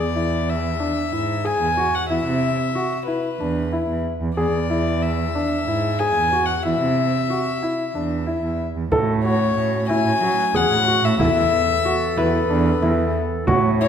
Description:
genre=contemporary instrumental, chamber music in an uneven meter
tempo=185 BPM (eighths)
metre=7/8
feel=straight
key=E mixolydian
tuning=A4 = 440 Hz
part: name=warm violin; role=melody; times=0.0-13.9 s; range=B4 to G#5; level=-23 LUFS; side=left 4 dB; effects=none
part: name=warm grand piano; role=arpeggios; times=0.0-13.9 s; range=D4 to A4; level=-23 LUFS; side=left 2 dB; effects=none
part: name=muted cello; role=bass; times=0.0-13.9 s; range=E2 to F#3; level=-23 LUFS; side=right 3 dB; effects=none
part: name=mellow woodwind section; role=sustained chords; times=8.9-13.9 s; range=E3 to C#5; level=-28 LUFS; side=right 2 dB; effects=none
part: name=frame drum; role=percussion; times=8.9-13.8 s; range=none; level=-28 LUFS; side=right 3 dB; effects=none
room=wet scoring stage reverb, RT60 1.7 s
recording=recorded in a church or concert hall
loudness=-18 LUFS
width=side -8 dB against mid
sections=0.0-8.9 A section; 8.9-13.9 B section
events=none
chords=0.0 E7; 2.1 D7sus2/E (rootless); 4.4 E7; 6.6 D7sus2/E (rootless); 8.9 A6; 11.2 Esus4

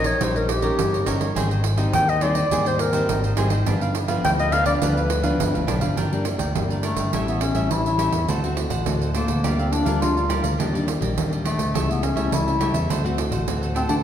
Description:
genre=samba and choro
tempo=104 BPM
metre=4/4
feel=straight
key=G minor from 6.0 s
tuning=A4 = 436 Hz
part: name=dark clarinet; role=melody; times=0.0-14.0 s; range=A3 to G5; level=-24 LUFS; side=left 2 dB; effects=none
part: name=cavaquinho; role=accompaniment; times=0.0-14.0 s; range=D4 to G5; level=-30 LUFS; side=right 3 dB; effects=none
part: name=nylon-string guitar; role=accompaniment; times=0.0-14.0 s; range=G2 to Bb4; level=-26 LUFS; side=left 2 dB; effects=none
part: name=picked electric bass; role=bass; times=0.0-14.0 s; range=G1 to E2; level=-24 LUFS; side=equal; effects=none
part: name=pandeiro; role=percussion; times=0.0-14.0 s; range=none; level=-27 LUFS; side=right 5 dB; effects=none
room=wet recital hall reverb, RT60 1.5 s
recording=recorded in a church or concert hall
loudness=-19 LUFS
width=side -10 dB against mid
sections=0.0-6.0 A section; 6.0-14.0 B section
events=none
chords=0.0 Eb7; 1.4 Abmaj7; 3.7 G7; 6.0 Gm; 7.1 A7; 8.3 D7; 9.4 Gm7/D; 10.6 Ebmaj7; 11.8 A7/C#; 12.9 D7

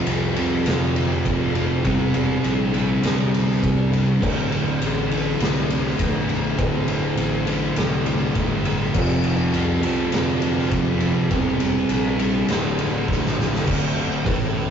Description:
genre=stoner and doom metal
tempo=101 BPM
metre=4/4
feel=straight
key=D minor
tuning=A4 = 439 Hz
part: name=swarming drone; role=sustained chords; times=1.2-14.7 s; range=C3 to G4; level=-36 LUFS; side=equal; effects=none
part: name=sludgy distorted guitar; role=riff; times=0.0-14.7 s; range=D2 to C4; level=-29 LUFS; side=equal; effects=none
part: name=thick fuzz guitar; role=riff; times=0.0-14.7 s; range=D2 to C4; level=-28 LUFS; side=left 4 dB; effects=none
part: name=thick fuzz guitar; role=riff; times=0.0-14.7 s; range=D2 to C4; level=-23 LUFS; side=right 3 dB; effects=distortion
part: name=fuzz fingered electric bass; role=bass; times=0.1-14.7 s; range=D1 to D2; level=-28 LUFS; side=left 1 dB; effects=overdrive
part: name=oversized low-tuned drum kit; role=drums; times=0.1-14.4 s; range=crash cymbal, hi-hat, kick drum, ride cymbal, snare drum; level=-24 LUFS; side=left 2 dB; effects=none
room=moderate booth ambience, RT60 0.2 s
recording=rough rehearsal-room recording, warm saturation, nothing above 7.6 kHz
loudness=-19 LUFS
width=side -8 dB against mid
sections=0.0-13.7 A section; 13.7-14.7 B section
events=drum fill 13.1-13.7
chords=0.0 F5; 1.8 C/E; 4.2 D5; 9.0 F5; 11.3 C/E; 12.5 D5

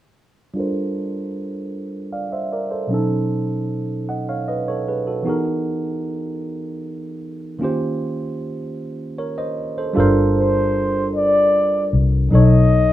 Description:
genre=slow six-eight R&B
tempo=51 BPM (dotted quarters)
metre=6/8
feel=straight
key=unclear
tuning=A4 = 440 Hz
part: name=tine electric piano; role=accompaniment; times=0.5-12.9 s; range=B2 to F#5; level=-21 LUFS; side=right 2 dB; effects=low-pass filter
part: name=vintage muted fingered electric bass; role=bass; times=10.0-12.9 s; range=G1 to C2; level=-16 LUFS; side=left 2 dB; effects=none
part: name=breathy flugelhorn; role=melody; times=10.4-12.9 s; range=C5 to D#5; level=-17 LUFS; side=left 2 dB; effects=slapback echo
room=light reverb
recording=rough home demo mix, studio reverb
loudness=-18 LUFS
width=side -13 dB against mid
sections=0.5-10.0 A section; 10.0-12.9 B section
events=filter sweep on tine electric piano 0.5-10.0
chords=0.5 Gm11; 2.9 B7; 5.3 Emaj9#11; 7.6 Eb13; 10.0 Gm11; 12.3 B7

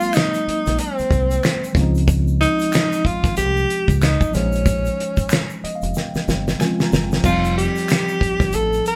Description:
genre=R&B, neo-soul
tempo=93 BPM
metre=4/4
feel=swing 60% on 16ths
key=Bb dorian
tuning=A4 = 439 Hz
part: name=breathy tenor saxophone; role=melody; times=0.0-9.0 s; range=C4 to Bb4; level=-23 LUFS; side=equal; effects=none
part: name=mellow tine electric piano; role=accompaniment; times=0.0-9.0 s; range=Eb3 to Bb5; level=-27 LUFS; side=equal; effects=none
part: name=damped 70s drum kit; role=drums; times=0.0-9.0 s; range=crash cymbal, finger snaps, hi-hat, kick drum, snare drum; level=-23 LUFS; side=equal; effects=none
part: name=egg shaker and finger snaps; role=percussion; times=0.0-9.0 s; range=none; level=-37 LUFS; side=equal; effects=none
part: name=deep dub fingered electric bass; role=bass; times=0.5-8.8 s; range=F1 to Db2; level=-24 LUFS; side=equal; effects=none
room=moderate studio reverb, RT60 0.7 s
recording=band playing live in one room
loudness=-19 LUFS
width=mono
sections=0.0-9.0 A section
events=tine electric piano fill 5.3-7.2; drum fill 5.9-7.2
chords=0.0 Ab9; 1.8 Dbmaj9; 4.3 Bbm11; 7.2 F9

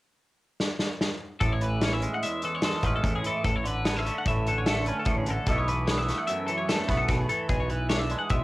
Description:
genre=math rock and midwest emo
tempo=148 BPM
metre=5/4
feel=straight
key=A major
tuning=A4 = 439 Hz
part: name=loose indie drum kit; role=drums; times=0.6-8.4 s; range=hi-hat, kick drum, snare drum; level=-28 LUFS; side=equal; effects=cassette tape
part: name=twangy electric guitar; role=accompaniment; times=1.4-8.4 s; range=E2 to E4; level=-30 LUFS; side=right 2 dB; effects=phaser
part: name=twelve-string electric guitar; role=arpeggios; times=1.4-8.4 s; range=G#4 to F#5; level=-31 LUFS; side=left 4 dB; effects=vibrato effect
part: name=growling picked electric bass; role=bass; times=1.4-8.4 s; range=A1 to B1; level=-30 LUFS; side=equal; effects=overdrive
room=little or no reverb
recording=home recording on cassette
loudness=-24 LUFS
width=side -18 dB against mid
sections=0.0-1.4 A section; 1.4-8.4 B section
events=drum fill 0.6-1.4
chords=0.0 N.C.; 1.4 Amaj7; 3.4 Dmaj7(no3)/A; 5.5 B7sus4; 7.5 E7/B

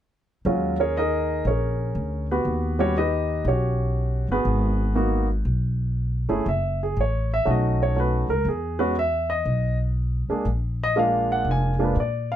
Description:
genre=jazz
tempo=120 BPM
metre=4/4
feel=swing 66% on 8ths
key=Eb minor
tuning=A4 = 439 Hz
part: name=warm baby grand piano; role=melody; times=0.5-12.4 s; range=Gb3 to Ab5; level=-23 LUFS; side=right 1 dB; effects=none
part: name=upright bass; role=bass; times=0.5-12.4 s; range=F1 to Bb2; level=-24 LUFS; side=equal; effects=none
room=little or no reverb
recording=close, detailed microphones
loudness=-21 LUFS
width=side -11 dB against mid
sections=0.5-12.4 A section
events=none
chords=0.5 Ebm11; 2.5 Eb7alt; 4.5 Abm7; 6.5 Gbm; 7.5 B7; 8.5 E; 10.5 Bb7

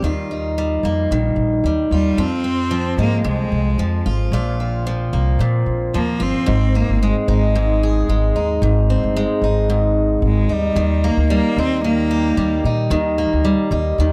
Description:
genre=acoustic pop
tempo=112 BPM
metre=4/4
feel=swing 55% on 16ths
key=Eb major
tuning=A4 = 440 Hz
part: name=picked steel-string acoustic guitar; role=accompaniment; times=0.0-14.1 s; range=F2 to Ab4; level=-22 LUFS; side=equal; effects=none
part: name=upright bass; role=bass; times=0.0-14.1 s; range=G1 to Bb2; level=-21 LUFS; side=equal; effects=none
part: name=rich cello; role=melody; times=1.9-12.6 s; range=G3 to C4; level=-25 LUFS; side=equal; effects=tape echo
room=light reverb, studio reverb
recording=dry, gritty hardware recording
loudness=-18 LUFS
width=mono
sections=0.0-6.5 A section; 6.5-14.1 B section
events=none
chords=0.0 Ebadd9; 2.2 Fm; 4.3 Bbsus2; 6.5 Ab; 10.8 Eb

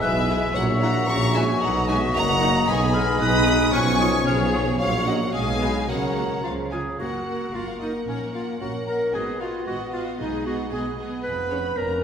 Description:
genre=cinematic, playful, whimsical film cue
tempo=113 BPM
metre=2/4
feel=straight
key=F# major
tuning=A4 = 442 Hz
part: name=clear chamber violin section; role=melody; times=0.0-11.6 s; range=C#5 to D#6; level=-29 LUFS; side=equal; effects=none
part: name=clear clarinet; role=second line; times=0.0-12.0 s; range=C#4 to E5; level=-29 LUFS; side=equal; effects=none
part: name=mellow silver concert flute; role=second line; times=0.0-6.7 s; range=A#5 to F#6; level=-29 LUFS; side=left 1 dB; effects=none
part: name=rich chamber violin section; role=second line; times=0.0-12.0 s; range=G#4 to B5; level=-30 LUFS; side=left 4 dB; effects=none
part: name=mellow bassoon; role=accompaniment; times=0.0-6.7 s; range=E#3 to G#3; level=-30 LUFS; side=right 1 dB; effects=none
part: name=mellow French horn section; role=sustained chords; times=0.0-12.0 s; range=C#3 to D#4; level=-29 LUFS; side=left 2 dB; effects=none
part: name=clear chamber double bass section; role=bass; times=0.0-12.0 s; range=E#1 to C#2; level=-29 LUFS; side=right 2 dB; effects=none
part: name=dark chamber cello section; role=bass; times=0.0-12.0 s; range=E#2 to C#3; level=-31 LUFS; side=right 1 dB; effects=none
part: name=warm tuba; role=bass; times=0.0-6.9 s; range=F#1 to C#2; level=-29 LUFS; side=right 2 dB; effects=none
part: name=rich studio viola section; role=accompaniment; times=0.3-11.6 s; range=G#3 to A#4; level=-33 LUFS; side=right 2 dB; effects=none
part: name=triangle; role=percussion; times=7.0-8.0 s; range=none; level=-53 LUFS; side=equal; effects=none
room=wet concert hall reverb, RT60 1.9 s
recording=recorded in a church or concert hall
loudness=-20 LUFS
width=side -7 dB against mid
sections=0.0-7.0 A section; 7.0-12.0 B section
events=none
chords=0.0 E/B; 0.6 F#7/A#; 1.6 B; 2.7 G#m/B; 3.7 C#7/B; 4.8 F#/A#; 5.3 B; 5.9 F#/C#; 6.4 C#; 7.0 F#; 8.1 F#/A#; 9.1 G#m7; 10.2 G#m/B; 11.2 C#7/E#

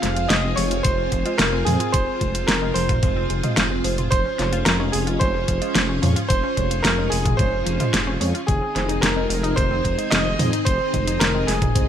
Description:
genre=synthwave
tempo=110 BPM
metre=4/4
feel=straight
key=unclear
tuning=A4 = 440 Hz
part: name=warm electric grand piano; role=melody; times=0.0-11.9 s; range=Ab4 to F5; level=-26 LUFS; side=right 1 dB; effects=digital delay
part: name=soft synth bell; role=second line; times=0.0-11.9 s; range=Ab5 to F6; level=-31 LUFS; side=right 1 dB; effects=chorus, phaser, ping-pong delay
part: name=string machine, full ensemble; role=sustained chords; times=0.0-11.9 s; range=C4 to Ab4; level=-28 LUFS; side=equal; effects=ensemble chorus, sidechain pumping
part: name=wide unison pluck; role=arpeggios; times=0.0-11.9 s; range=Eb3 to F4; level=-31 LUFS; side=left 3 dB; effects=ping-pong delay
part: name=FM electric piano with soft pad layer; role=stabs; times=0.0-11.8 s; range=Ab3 to Eb5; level=-32 LUFS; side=right 2 dB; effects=chorus
part: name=dark detuned saw bass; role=bass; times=0.0-11.9 s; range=F1 to F2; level=-24 LUFS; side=equal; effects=none
part: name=pop drum kit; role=drums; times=0.0-11.9 s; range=hi-hat, snare drum, toms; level=-22 LUFS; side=equal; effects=none
part: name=electronic kick drum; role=drums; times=0.8-11.9 s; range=none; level=-22 LUFS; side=equal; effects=none
room=light reverb, digital ambience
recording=bright 1980s-style digital production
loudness=-18 LUFS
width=side -9 dB against mid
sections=0.0-11.9 A section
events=none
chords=0.0 Ab/F; 4.1 Db/F; 8.5 Ab/F

